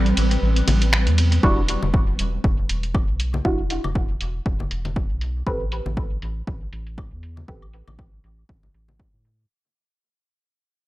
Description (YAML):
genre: dub techno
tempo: 119 BPM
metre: 4/4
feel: swing 56% on 16ths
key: E minor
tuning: A4 = 440 Hz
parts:
  - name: granular cloud pad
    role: sustained chords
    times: 0.0-1.4 s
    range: G3 to B4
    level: -26 LUFS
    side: right 1 dB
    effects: built-in reverb, sidechain pumping
  - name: round analog bass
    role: bass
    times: 0.0-9.5 s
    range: E1 to A2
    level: -23 LUFS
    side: equal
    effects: sidechain pumping
  - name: lo-fi sampler-style drum kit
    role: drums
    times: 0.1-9.4 s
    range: finger snaps, hi-hat, ride cymbal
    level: -25 LUFS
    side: right 1 dB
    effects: low-pass filter on hats, studio reverb, low-pass filter on cymbals, low-pass filter on snare
  - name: congas and woodblock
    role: percussion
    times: 0.7-9.0 s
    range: none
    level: -30 LUFS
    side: left 3 dB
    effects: overdrive, sidechain pumping on perc, studio reverb, dub echo
  - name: filtered dub chord stab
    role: stabs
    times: 1.4-7.7 s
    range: G3 to B4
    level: -27 LUFS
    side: right 1 dB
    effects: chorus, phaser, sidechain pumping, dub echo
  - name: electronic kick drum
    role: drums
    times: 1.4-9.1 s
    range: none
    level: -22 LUFS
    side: equal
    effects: studio reverb
room: digital ambience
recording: dry, gritty hardware recording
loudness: -19 LUFS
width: side -17 dB against mid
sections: 0.0-1.4 A section; 1.4-9.5 B section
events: break 0.0-1.4; fade-out 1.4-9.5; filter sweep on synth stab 1.4-9.5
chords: 0.0 Am9; 1.4 E5; 5.5 N.C.